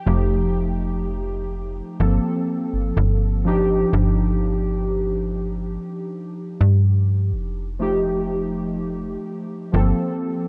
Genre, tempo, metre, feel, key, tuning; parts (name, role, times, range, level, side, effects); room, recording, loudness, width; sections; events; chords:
vaporwave; 62 BPM; 4/4; straight; A4 = 440 Hz
warbly lo-fi synth keys; accompaniment; 0.0-10.5 s; F3 to A4; -25 LUFS; equal; subtle chorus, vintage 12-bit sampler grit, analog delay
slap-like FM bass; bass; 0.1-9.9 s; F1 to G2; -23 LUFS; equal
light reverb; dark, warm production, cassette tape; -22 LUFS; mono
0.1-10.5 A section
0.1 F9; 2.0 Gm11; 3.5 Ebmaj9/G; 7.8 F9; 9.7 Gm11